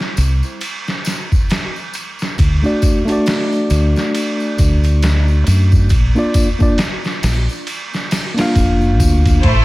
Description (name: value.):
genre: trip hop.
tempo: 68 BPM.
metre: 4/4.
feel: swing 59% on 16ths.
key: unclear.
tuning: A4 = 442 Hz.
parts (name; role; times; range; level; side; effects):
trip hop sampler-style drum kit; drums; 0.0-9.6 s; hi-hat, kick drum, ride cymbal, snare drum; -17 LUFS; equal; none.
deep dub fingered electric bass; bass; 0.2-9.6 s; F1 to F#2; -13 LUFS; equal; none.
tambourine; percussion; 0.2-9.4 s; none; -32 LUFS; left 4 dB; none.
mellow tine electric piano; accompaniment; 2.6-9.4 s; A3 to F5; -19 LUFS; equal; harmonic tremolo, tape echo.
clear studio violin section; sustained chords; 9.4-9.6 s; A3 to C5; -16 LUFS; equal; none.
room: little or no reverb.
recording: vinyl crackle.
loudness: -13 LUFS.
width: side -19 dB against mid.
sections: 0.0-9.4 A section.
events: none.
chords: 0.0 N.C.; 2.4 D; 5.9 Bb.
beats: 0.62 1.50 | 2.38 3.26 4.15 5.03 | 5.91 6.79 7.68 8.56 | 9.44.